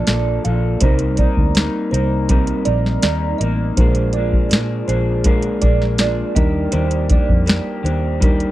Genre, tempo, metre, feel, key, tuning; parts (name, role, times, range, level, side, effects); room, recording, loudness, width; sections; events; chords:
indie pop, bedroom pop; 81 BPM; 4/4; straight; Bb major; A4 = 440 Hz
electric guitar through a small old amp; accompaniment; 0.0-8.5 s; Bb2 to Bb4; -24 LUFS; left 4 dB; wide subtle chorus, vibrato effect
mellow reed electric piano; accompaniment; 0.0-8.5 s; F3 to Bb4; -24 LUFS; right 1 dB
kalimba; second line; 0.1-8.0 s; Bb4 to F5; -25 LUFS; right 9 dB; analog chorus, slapback echo
vintage muted fingered electric bass; bass; 0.1-8.4 s; A1 to Bb2; -20 LUFS; equal
soft vintage rhythm box; drums; 0.1-8.5 s; hi-hat, kick drum, snare drum; -16 LUFS; equal
little or no reverb; dry, close 1970s-style studio recording; -15 LUFS; side -15 dB against mid
0.0-8.5 A section
0.0 Bbmaj7; 0.8 Cm7; 3.8 Bb7; 6.4 Ebmaj7